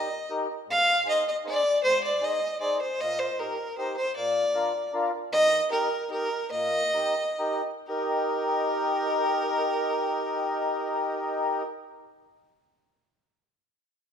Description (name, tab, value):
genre	alpine folk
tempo	120-157 BPM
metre	3/4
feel	straight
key	Eb major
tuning	A4 = 440 Hz
part	warm fiddle	melody	0.0-11.6 s	Bb4 to F5	-26 LUFS	equal	none
part	mellow accordion	accompaniment	0.0-11.6 s	Ab2 to C5	-29 LUFS	left 1 dB	none
room	wet recital hall reverb, RT60 1.6 s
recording	minimal, uncompressed stereo recording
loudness	-24 LUFS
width	side -7 dB against mid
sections	0.0-7.9 A section; 7.9-10.9 B section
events	slowing down 5.3-7.9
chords	0.0 Eb; 0.7 Ab; 3.0 Eb/Bb; 4.2 Bb; 5.3 Eb